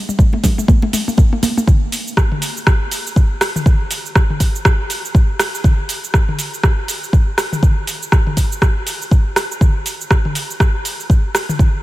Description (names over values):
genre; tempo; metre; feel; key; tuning
house; 121 BPM; 4/4; swing 59% on 16ths; none; none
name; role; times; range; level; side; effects
afro-pop drum kit; drums; 0.1-11.7 s; hi-hat, rim click, shaker, toms; -19 LUFS; equal; none
electronic kick drum; drums; 0.2-11.7 s; none; -12 LUFS; equal; none
congas; percussion; 0.3-1.7 s; none; -24 LUFS; right 3 dB; none
room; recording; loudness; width
light reverb; none; -13 LUFS; side -17 dB against mid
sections
0.0-1.7 A section; 1.7-11.8 B section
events
build-up 0.0-1.7; drum fill 0.0-1.7; drop 1.7-11.8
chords
none